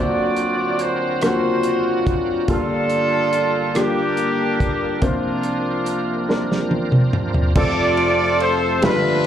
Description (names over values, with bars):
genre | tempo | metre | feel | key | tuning
slow gospel | 47 BPM (dotted quarters) | 6/8 | straight | F major | A4 = 440 Hz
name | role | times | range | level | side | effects
clear horn section | melody | 0.0-9.3 s | Bb3 to D5 | -19 LUFS | left 1 dB | slapback echo
clear baby grand piano | accompaniment | 0.0-9.3 s | F1 to E5 | -24 LUFS | left 1 dB | slapback echo
bright tonewheel organ | sustained chords | 0.0-9.3 s | F3 to E5 | -26 LUFS | right 4 dB | slow rotary speaker, overdrive, chorus vibrato
warm soul drum kit | drums | 0.4-9.3 s | crash cymbal, hi-hat, kick drum, ride cymbal, rim click, snare drum, toms | -21 LUFS | equal | none
room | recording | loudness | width
light reverb | live gig heard through the venue's PA, club reverb | -17 LUFS | side -9 dB against mid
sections
0.0-7.6 A section; 7.6-9.3 B section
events
drum fill 6.3-7.6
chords
0.0 D7alt; 2.5 Gm9; 5.0 C9sus4; 7.6 F